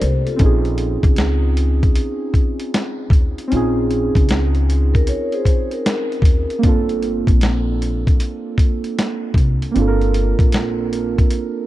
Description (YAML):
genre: lo-fi hip hop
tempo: 77 BPM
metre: 4/4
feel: swing 66% on 16ths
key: unclear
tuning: A4 = 439 Hz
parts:
  - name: vibraphone with soft mallets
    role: second line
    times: 0.0-6.6 s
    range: F4 to Db5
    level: -25 LUFS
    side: left 3 dB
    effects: low-pass filter, tape echo
  - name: muted felt-like synth keys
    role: accompaniment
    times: 0.0-11.7 s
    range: Bb3 to Bb4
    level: -21 LUFS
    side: right 3 dB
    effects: chorus, low-pass filter
  - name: upright bass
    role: bass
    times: 0.0-11.3 s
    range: G1 to Eb2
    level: -19 LUFS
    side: equal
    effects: none
  - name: dusty soul sampler-style drum kit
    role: drums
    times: 0.0-11.5 s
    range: hi-hat, kick drum, snare drum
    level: -16 LUFS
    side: equal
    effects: none
room: small room ambience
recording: dark, warm production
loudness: -15 LUFS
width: side -15 dB against mid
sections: 0.0-11.7 A section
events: synth keys fill 11.3-11.7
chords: 0.4 Bbm11; 6.6 Gm11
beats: | 0.40 1.18 1.96 2.73 | 3.51 4.29 5.07 5.85 | 6.63 7.41 8.19 8.97 | 9.75 10.53 11.31